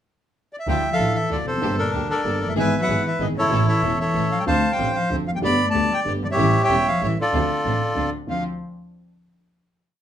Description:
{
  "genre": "tango",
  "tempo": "189 BPM",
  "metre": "3/4",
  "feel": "rubato",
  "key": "D minor",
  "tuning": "A4 = 441 Hz",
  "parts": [
    { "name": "bandoneon", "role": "melody", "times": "0.5-8.4 s", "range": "D4 to B5", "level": "-21 LUFS", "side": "equal", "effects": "none" },
    { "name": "warm cello", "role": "second line", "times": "0.7-8.4 s", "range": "Bb2 to B3", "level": "-28 LUFS", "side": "left 4 dB", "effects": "none" },
    { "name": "dark upright piano", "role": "accompaniment", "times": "0.7-8.4 s", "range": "E1 to A4", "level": "-26 LUFS", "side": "right 1 dB", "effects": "none" },
    { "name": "rich chamber string section", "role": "stabs", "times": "0.7-8.4 s", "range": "A3 to A4", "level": "-33 LUFS", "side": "right 1 dB", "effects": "none" },
    { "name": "rich double bass", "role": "bass", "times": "0.7-8.4 s", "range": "E1 to D2", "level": "-28 LUFS", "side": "right 1 dB", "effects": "none" }
  ],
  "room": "moderate club reverb, RT60 0.7 s",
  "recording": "minimal, uncompressed stereo recording",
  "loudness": "-19 LUFS",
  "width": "side -10 dB against mid",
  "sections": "0.0-0.7 pickup bar; 0.7-8.3 A section; 8.3-9.2 final chord",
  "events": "none",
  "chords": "0.0 N.C.; 0.7 Dmadd9; 1.6 Gmadd9; 2.6 E/G#; 3.5 A; 4.5 Dm7; 5.4 Gadd9; 6.4 A7; 7.3 Dm7",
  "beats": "0.04 0.36 | 0.68 0.99 1.31 | 1.62 1.94 2.26 | 2.57 2.89 3.21 | 3.52 3.84 4.16 | 4.48 4.79 5.11 | 5.43 5.74 6.06 | 6.38 6.70 7.01 | 7.33 7.65 7.96 | 8.28"
}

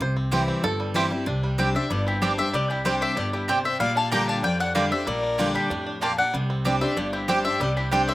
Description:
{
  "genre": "bluegrass",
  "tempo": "190 BPM",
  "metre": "4/4",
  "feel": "straight",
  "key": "C mixolydian",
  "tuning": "A4 = 440 Hz",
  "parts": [
    { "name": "bluegrass banjo", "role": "melody", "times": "0.0-8.1 s", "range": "G3 to C5", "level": "-32 LUFS", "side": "right 2 dB", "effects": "slapback echo" },
    { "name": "picked steel-string acoustic guitar", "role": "accompaniment", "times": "0.0-8.1 s", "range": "F2 to G4", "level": "-27 LUFS", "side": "left 1 dB", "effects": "none" },
    { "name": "upright bass", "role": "bass", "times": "0.0-8.1 s", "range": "G1 to F2", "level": "-30 LUFS", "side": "equal", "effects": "none" },
    { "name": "mandolin", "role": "stabs", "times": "0.3-8.0 s", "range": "Bb3 to G5", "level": "-26 LUFS", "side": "right 4 dB", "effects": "slapback echo" },
    { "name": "clear fiddle", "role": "second line", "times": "1.7-8.1 s", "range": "D4 to G5", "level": "-33 LUFS", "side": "left 3 dB", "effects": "slapback echo" },
    { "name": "mandolin", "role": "melody", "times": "1.8-8.1 s", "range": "G4 to Bb5", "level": "-26 LUFS", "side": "left 2 dB", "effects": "none" }
  ],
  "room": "little or no reverb",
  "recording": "recorded outdoors, with no room sound",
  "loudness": "-21 LUFS",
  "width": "side -16 dB against mid",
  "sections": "0.0-1.3 A section; 1.3-8.1 B section",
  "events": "five-string banjo solo 0.0-1.3",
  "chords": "0.0 C; 1.3 Csus2; 3.8 Bb6; 6.3 Csus2",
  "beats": "| 0.01 0.32 0.64 0.95 | 1.27 1.59 1.90 2.22 | 2.54 2.85 3.17 3.49 | 3.80 4.12 4.44 4.75 | 5.07 5.39 5.70 6.02 | 6.34 6.65 6.97 7.29 | 7.60 7.92"
}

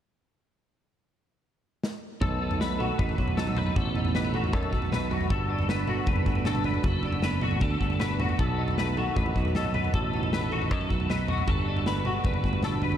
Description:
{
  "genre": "math rock and midwest emo",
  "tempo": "156 BPM",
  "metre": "4/4",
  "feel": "straight",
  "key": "unclear",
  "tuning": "A4 = 441 Hz",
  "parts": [
    { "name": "modern studio drum kit", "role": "drums", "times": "1.8-13.0 s", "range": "kick drum, snare drum, toms", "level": "-28 LUFS", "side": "equal", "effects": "none" },
    { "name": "twelve-string electric guitar", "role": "accompaniment", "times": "2.2-13.0 s", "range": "D2 to A4", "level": "-32 LUFS", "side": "right 7 dB", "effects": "lush chorus" },
    { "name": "twangy electric guitar", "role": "arpeggios", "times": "2.2-13.0 s", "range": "F#4 to B4", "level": "-31 LUFS", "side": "left 5 dB", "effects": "ensemble chorus, diffuse ambient delay" },
    { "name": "picked electric bass", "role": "bass", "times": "2.2-13.0 s", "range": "F#1 to F#2", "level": "-30 LUFS", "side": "equal", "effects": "none" }
  ],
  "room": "moderate huge ambient reverb, RT60 7.3 s",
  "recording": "dreamy mix soaked in reverb, cassette tape",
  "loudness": "-24 LUFS",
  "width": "side -10 dB against mid",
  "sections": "0.7-2.2 A section; 2.2-13.0 B section",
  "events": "drum fill 1.8-2.2",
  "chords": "0.7 N.C.; 2.2 B7; 5.3 Gmaj7; 8.4 B7; 11.5 Gmaj7",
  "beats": "| 0.68 1.07 1.45 1.84 | 2.22 2.61 2.99 3.38 | 3.76 4.15 4.53 4.92 | 5.30 5.69 6.08 6.46 | 6.85 7.23 7.62 8.00 | 8.39 8.78 9.16 9.55 | 9.93 10.32 10.71 11.09 | 11.48 11.87 12.26 12.64"
}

